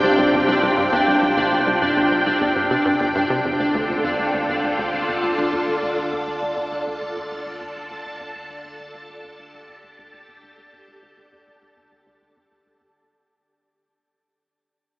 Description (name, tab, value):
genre	ambient, sequencer-driven space music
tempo	101 BPM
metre	4/4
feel	straight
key	unclear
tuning	A4 = 440 Hz
part	phased string machine	sustained chords	0.0-13.0 s	C3 to A5	-22 LUFS	equal	ensemble chorus, phaser, shimmer reverb
part	tight sequencer bass	riff	0.0-12.9 s	C2 to C3	-27 LUFS	equal	tape echo
part	warm sub bass	bass	0.0-12.9 s	C2 to D2	-51 LUFS	equal	none
part	pulsing gated texture	texture	0.0-13.0 s	D4 to D5	-22 LUFS	equal	chorus, built-in reverb, shimmer reverb
room	wet cathedral reverb, RT60 6.1 s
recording	in a vast, echoing space, AM radio sound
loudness	-18 LUFS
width	side -22 dB against mid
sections	0.0-13.0 A section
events	fade-out 0.0-13.0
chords	0.0 Csus4; 3.5 Dm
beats	0.48 | 1.07 1.67 2.26 2.86 | 3.45 4.04 4.64 5.23 | 5.83 6.42 7.01 7.61 | 8.20 8.80 9.39 9.98 | 10.58 11.17 11.77 12.36